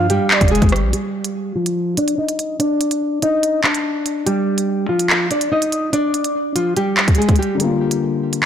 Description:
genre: hip hop, drill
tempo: 144 BPM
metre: 4/4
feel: half-time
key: G phrygian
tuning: A4 = 440 Hz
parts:
  - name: nylon-string guitar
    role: melody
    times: 0.0-7.6 s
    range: F3 to Eb5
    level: -18 LUFS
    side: equal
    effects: low-pass filter
  - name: gliding portamento lead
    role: second line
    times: 0.0-0.5 s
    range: D5 to F5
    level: -24 LUFS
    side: right 6 dB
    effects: chorus, ping-pong delay
  - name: dark concert grand piano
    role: accompaniment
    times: 0.0-1.0, 7.5-8.5 s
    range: D3 to F4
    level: -18 LUFS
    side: left 4 dB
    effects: low-pass filter
  - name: hard-hitting 808-style bass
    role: bass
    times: 0.0-0.9 s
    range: F1 to G2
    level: -20 LUFS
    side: equal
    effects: none
  - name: drill drum kit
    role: drums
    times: 0.1-8.5 s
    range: handclaps, hi-hat, kick drum, rim click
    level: -17 LUFS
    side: equal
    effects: none
room: light reverb, digital ambience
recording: blown-out, overdriven recording, overdrive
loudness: -15 LUFS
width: side -9 dB against mid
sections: 0.9-7.6 A section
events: filter sweep on nylon-string guitar 0.9-7.6; break 7.6-8.5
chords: 0.0 Gm7; 0.9 G5; 7.6 Gm7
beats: 0.10 0.52 | 0.93 1.35 1.76 2.18 | 2.60 3.02 3.43 3.85 | 4.26 4.68 5.10 5.51 | 5.93 6.35 6.76 7.18 | 7.60 8.02 8.43

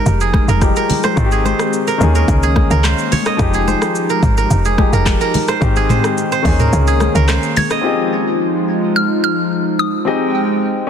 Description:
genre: afrobeats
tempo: 108 BPM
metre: 4/4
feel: straight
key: F minor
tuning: A4 = 439 Hz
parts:
  - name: warm baby grand piano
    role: accompaniment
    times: 0.0-10.9 s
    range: Eb3 to Eb5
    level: -20 LUFS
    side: left 6 dB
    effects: none
  - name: hollow soft pad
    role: sustained chords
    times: 0.0-10.9 s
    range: Eb3 to G5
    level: -20 LUFS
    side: equal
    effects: chorus
  - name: kora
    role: riff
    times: 0.0-8.8 s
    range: Ab4 to Eb5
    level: -20 LUFS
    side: right 7 dB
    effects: tape echo
  - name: woody log drum bass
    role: bass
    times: 0.0-7.4 s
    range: F1 to Eb2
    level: -15 LUFS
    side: equal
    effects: none
  - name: afro-pop drum kit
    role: drums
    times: 0.1-7.8 s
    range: handclaps, hi-hat, kick drum, rim click, shaker, toms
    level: -18 LUFS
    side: equal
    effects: soft clipping on snare, vintage 12-bit sampler grit
  - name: congas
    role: percussion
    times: 0.1-7.7 s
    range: none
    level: -23 LUFS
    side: left 2 dB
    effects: none
  - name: mallet-like synth pluck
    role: melody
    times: 7.6-10.3 s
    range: Eb6 to Ab6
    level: -21 LUFS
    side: left 1 dB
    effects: chorus, phaser, tape echo
room: light reverb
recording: dense, heavily limited modern master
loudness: -12 LUFS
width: side -8 dB against mid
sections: 0.0-7.8 A section; 7.8-10.9 B section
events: kick muted 6.7-7.8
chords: 0.0 Fm9; 1.2 Abmaj7; 2.0 Eb7sus4; 3.4 Fm9; 5.6 Abmaj7; 6.4 Eb7sus4; 7.8 Fm9; 10.1 Abmaj7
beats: 0.06 0.62 | 1.17 1.73 2.28 2.84 | 3.39 3.95 4.50 5.06 | 5.62 6.17 6.73 7.28 | 7.84 8.39 8.95 9.51 | 10.06 10.62

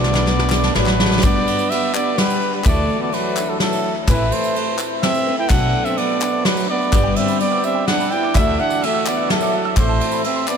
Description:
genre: indie folk with a building arrangement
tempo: 127 BPM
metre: 3/4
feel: straight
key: G major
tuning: A4 = 442 Hz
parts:
  - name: mellow trumpet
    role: melody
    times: 0.0-10.6 s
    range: A4 to G5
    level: -22 LUFS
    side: left 1 dB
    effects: tape echo
  - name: warm trombone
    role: second line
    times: 0.0-10.6 s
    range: E3 to E4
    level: -23 LUFS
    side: right 7 dB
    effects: none
  - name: clear upright piano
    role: accompaniment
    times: 0.0-10.6 s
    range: G1 to E5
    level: -32 LUFS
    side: left 3 dB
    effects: none
  - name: picked twelve-string acoustic guitar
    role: accompaniment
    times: 0.0-10.6 s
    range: G2 to B4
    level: -25 LUFS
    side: left 7 dB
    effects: none
  - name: clear upright piano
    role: arpeggios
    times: 0.0-1.2, 6.9-10.6 s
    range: D5 to E6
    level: -27 LUFS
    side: right 6 dB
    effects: tape echo
  - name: upright bass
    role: bass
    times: 0.0-10.0 s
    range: G1 to D2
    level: -22 LUFS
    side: equal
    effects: none
  - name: soft brush drum kit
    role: drums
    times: 0.0-10.3 s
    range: kick drum, ride cymbal, snare drum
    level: -21 LUFS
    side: equal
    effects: none
  - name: group handclap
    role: percussion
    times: 0.1-10.6 s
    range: none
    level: -32 LUFS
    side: left 7 dB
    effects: none
  - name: tambourine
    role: percussion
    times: 0.3-10.6 s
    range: none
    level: -36 LUFS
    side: right 15 dB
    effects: none
room: moderate huge ambient reverb, RT60 4.1 s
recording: dreamy mix soaked in reverb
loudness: -15 LUFS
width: side -7 dB against mid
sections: 0.0-1.2 A section; 1.2-10.6 B section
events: build-up 0.0-1.2; drum fill 0.0-1.2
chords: 0.0 Bm7; 1.2 G; 2.7 Dadd9; 4.1 Amadd9; 5.5 Bm7; 6.9 G; 8.3 Dadd9; 9.8 Amadd9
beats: 0.29 0.76 | 1.24 1.71 2.19 | 2.66 3.13 3.61 | 4.08 4.56 5.03 | 5.50 5.98 6.45 | 6.92 7.40 7.87 | 8.34 8.82 9.29 | 9.76 10.23

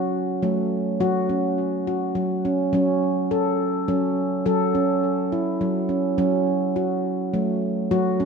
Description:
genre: world meditative, meditative tuned percussion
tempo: 104 BPM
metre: 3/4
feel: swing 55% on 16ths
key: F# minor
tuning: A4 = 442 Hz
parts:
  - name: handpan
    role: solo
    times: 0.0-8.3 s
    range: F#3 to A4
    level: -20 LUFS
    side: right 1 dB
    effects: tape echo
room: wet echo chamber reverb, RT60 2.6 s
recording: cassette tape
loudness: -20 LUFS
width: side -5 dB against mid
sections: 0.0-8.3 A section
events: none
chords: 0.0 F#m; 2.7 A/F#; 6.2 F#m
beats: 0.43 | 1.00 1.58 2.16 | 2.73 3.31 3.88 | 4.46 5.04 5.61 | 6.19 6.76 7.34 | 7.92

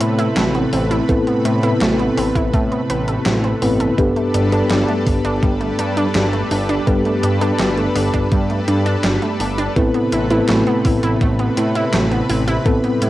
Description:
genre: synthwave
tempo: 83 BPM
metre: 4/4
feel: straight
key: A minor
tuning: A4 = 440 Hz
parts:
  - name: analog string pad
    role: sustained chords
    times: 0.0-13.1 s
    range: C3 to B4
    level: -23 LUFS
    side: equal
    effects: ensemble chorus, sidechain pumping, cassette tape
  - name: wide unison pluck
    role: arpeggios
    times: 0.0-13.1 s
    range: G3 to B4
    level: -23 LUFS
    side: right 2 dB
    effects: cassette tape, analog delay, plate reverb
  - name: mellow tine electric piano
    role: stabs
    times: 0.0-13.1 s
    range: G2 to B4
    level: -19 LUFS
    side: left 1 dB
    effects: medium stereo tremolo, cassette tape, analog delay
  - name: fat analog bass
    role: bass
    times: 0.0-13.1 s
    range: G1 to A2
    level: -21 LUFS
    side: equal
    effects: tube saturation
  - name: gated 80s digital drum machine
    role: drums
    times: 0.0-13.1 s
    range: handclaps, hi-hat, snare drum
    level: -23 LUFS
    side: equal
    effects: gated reverb, gated reverb snare, overdrive, cassette tape
  - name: electronic kick drum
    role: drums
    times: 1.1-12.8 s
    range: none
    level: -19 LUFS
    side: equal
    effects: overdrive, cassette tape
room: moderate studio reverb, RT60 0.6 s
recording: home recording on cassette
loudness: -15 LUFS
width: side -15 dB against mid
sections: 0.0-13.1 A section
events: none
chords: 0.0 Amadd9; 4.0 Gadd9; 9.8 Amadd9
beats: 0.37 | 1.09 1.81 2.54 3.26 | 3.98 4.71 5.43 6.15 | 6.87 7.60 8.32 9.04 | 9.77 10.49 11.21 11.93 | 12.66

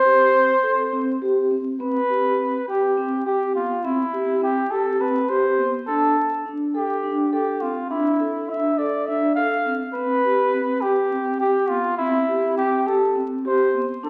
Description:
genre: contemporary instrumental, contemporary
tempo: 206 BPM (eighths)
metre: 7/8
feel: straight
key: C major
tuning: A4 = 440 Hz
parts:
  - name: warm flugelhorn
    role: melody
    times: 0.0-14.1 s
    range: E4 to F5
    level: -24 LUFS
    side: equal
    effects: none
  - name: vibraphone with soft mallets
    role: arpeggios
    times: 0.1-14.1 s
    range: B3 to A4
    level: -25 LUFS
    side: equal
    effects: none
room: wet recital hall reverb, RT60 1.3 s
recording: very old 78 rpm record, vinyl crackle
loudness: -21 LUFS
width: mono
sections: 0.0-1.8 A section; 1.8-14.1 B section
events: none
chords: 0.0 C5; 1.8 Cmaj7(no3); 5.9 Dsus2; 10.0 Cmaj7(no3)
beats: 0.06 0.35 0.64 0.93 1.22 1.51 | 1.80 2.10 2.39 2.68 2.97 3.26 3.55 | 3.84 4.13 4.43 4.72 5.01 5.30 5.59 | 5.88 6.17 6.46 6.75 7.04 7.34 7.63 | 7.92 8.21 8.50 8.79 9.08 9.37 9.66 | 9.96 10.25 10.54 10.83 11.12 11.41 11.70 | 11.99 12.28 12.57 12.86 13.15 13.45 13.74 | 14.03

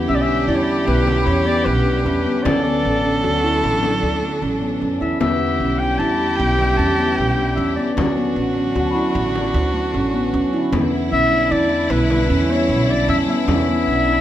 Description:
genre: contemporary instrumental, chamber music in an uneven meter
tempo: 152 BPM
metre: 7/4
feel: straight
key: E dorian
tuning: A4 = 439 Hz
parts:
  - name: dark viola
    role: second line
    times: 0.0-14.2 s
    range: E4 to A4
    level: -23 LUFS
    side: right 2 dB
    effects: none
  - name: clear studio string section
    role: sustained chords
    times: 0.0-14.2 s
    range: D3 to E4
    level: -27 LUFS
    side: left 1 dB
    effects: none
  - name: handpan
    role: arpeggios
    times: 0.0-14.2 s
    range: A3 to F#4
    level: -20 LUFS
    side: equal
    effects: none
  - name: upright bass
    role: bass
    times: 0.0-14.2 s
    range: A1 to F#2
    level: -23 LUFS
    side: right 1 dB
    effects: none
  - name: warm clarinet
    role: melody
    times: 0.1-14.2 s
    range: B4 to A5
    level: -22 LUFS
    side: left 2 dB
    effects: none
  - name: frame drum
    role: percussion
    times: 0.9-14.0 s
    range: none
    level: -28 LUFS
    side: left 4 dB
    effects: none
  - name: large celesta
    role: texture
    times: 1.2-2.5, 8.8-10.2 s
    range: F#5 to B5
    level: -32 LUFS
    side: left 6 dB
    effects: none
room: light reverb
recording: close, detailed microphones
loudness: -16 LUFS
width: side -12 dB against mid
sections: 0.0-14.2 A section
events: none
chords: 0.0 Em7; 2.5 Dmaj7; 5.2 Em7; 8.0 Dmaj7; 10.7 Em7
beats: 0.09 0.48 0.88 1.27 1.67 2.06 | 2.46 2.85 3.24 3.64 4.03 4.43 4.82 | 5.21 5.61 6.00 6.40 6.79 7.18 7.58 | 7.97 8.37 8.76 9.15 9.55 9.94 10.34 | 10.73 11.12 11.52 11.91 12.30 12.70 13.09 | 13.48 13.88

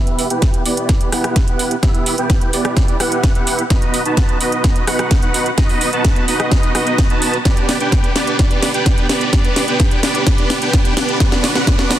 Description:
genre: EDM, festival progressive house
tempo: 128 BPM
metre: 4/4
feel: straight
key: E minor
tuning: A4 = 439 Hz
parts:
  - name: dense compressed supersaw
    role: riff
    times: 0.0-12.0 s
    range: B3 to A5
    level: -18 LUFS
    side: right 1 dB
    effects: sidechain pumping, low-pass filter, dub echo
  - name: house drum kit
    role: drums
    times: 0.1-12.0 s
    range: hi-hat, rim click, snare drum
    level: -20 LUFS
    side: equal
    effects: studio reverb, soft clipping on snare
  - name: electronic kick drum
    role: drums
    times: 0.4-11.8 s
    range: none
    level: -15 LUFS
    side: equal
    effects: studio reverb
room: light reverb, digital ambience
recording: dense, heavily limited modern master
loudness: -13 LUFS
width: side -12 dB against mid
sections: 0.0-12.0 A section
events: build-up 0.0-12.0; drum fill 0.0-12.0; filter sweep on supersaw synth 0.0-12.0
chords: 0.0 Em; 3.7 B; 7.5 G; 11.2 D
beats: 0.42 0.89 1.36 | 1.83 2.30 2.77 3.23 | 3.70 4.17 4.64 5.11 | 5.58 6.05 6.52 6.99 | 7.45 7.92 8.39 8.86 | 9.33 9.80 10.27 10.73 | 11.20 11.67

